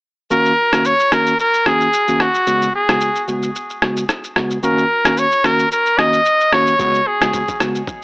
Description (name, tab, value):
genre	afrobeats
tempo	111 BPM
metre	4/4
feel	swing 55% on 16ths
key	Eb minor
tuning	A4 = 439 Hz
part	bright trumpet	melody	0.3-7.6 s	Gb4 to Eb5	-15 LUFS	equal	analog delay
part	tine electric piano	accompaniment	0.3-7.8 s	Db3 to Gb4	-20 LUFS	equal	medium tremolo
part	boom bap sampler-style drum kit	drums	0.3-8.0 s	kick drum, rim click, shaker	-19 LUFS	equal	overdrive
room	little or no reverb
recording	dry, gritty hardware recording, AM radio sound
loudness	-13 LUFS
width	side -37 dB against mid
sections	0.3-8.0 A section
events	none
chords	0.3 Ebm7; 2.5 Db7sus4; 4.6 Ebm7; 6.8 Db7sus4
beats	| 0.31 0.85 1.39 1.93 | 2.47 3.01 3.55 4.09 | 4.63 5.17 5.71 6.25 | 6.79 7.33 7.87